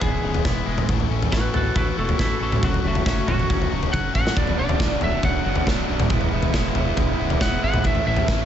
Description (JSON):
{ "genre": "quiet-loud alternative rock", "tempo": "138 BPM", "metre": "4/4", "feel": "straight", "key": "B dorian", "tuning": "A4 = 440 Hz", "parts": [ { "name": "lightly driven lead guitar", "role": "melody", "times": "0.0-8.5 s", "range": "A3 to F#5", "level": "-27 LUFS", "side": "equal", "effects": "none" }, { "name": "twangy electric guitar", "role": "arpeggios", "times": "0.0-4.4 s", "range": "E2 to A4", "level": "-31 LUFS", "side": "right 3 dB", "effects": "phaser, slapback echo" }, { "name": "distorted electric guitar", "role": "riff", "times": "0.0-8.5 s", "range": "B1 to A4", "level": "-28 LUFS", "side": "left 10 dB", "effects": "overdrive, slapback echo" }, { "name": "growling fingered electric bass", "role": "bass", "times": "0.0-8.4 s", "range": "B0 to A1", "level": "-27 LUFS", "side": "equal", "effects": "overdrive" }, { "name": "big rock drum kit", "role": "drums", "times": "0.0-8.4 s", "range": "kick drum, snare drum, toms", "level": "-22 LUFS", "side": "equal", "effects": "none" }, { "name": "raw garage guitar", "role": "riff", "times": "4.4-8.5 s", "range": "B1 to A4", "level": "-27 LUFS", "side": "right 12 dB", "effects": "overdrive, slapback echo" } ], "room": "light reverb, small room ambience", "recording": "nothing above 7.9 kHz", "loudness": "-19 LUFS", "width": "side -10 dB against mid", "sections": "0.0-8.5 A section", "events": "lead electric guitar solo 0.0-8.5; drum fill 3.9-4.4", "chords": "0.0 E; 0.9 A; 2.6 F#m; 4.4 Bm; 6.1 E; 7.9 A" }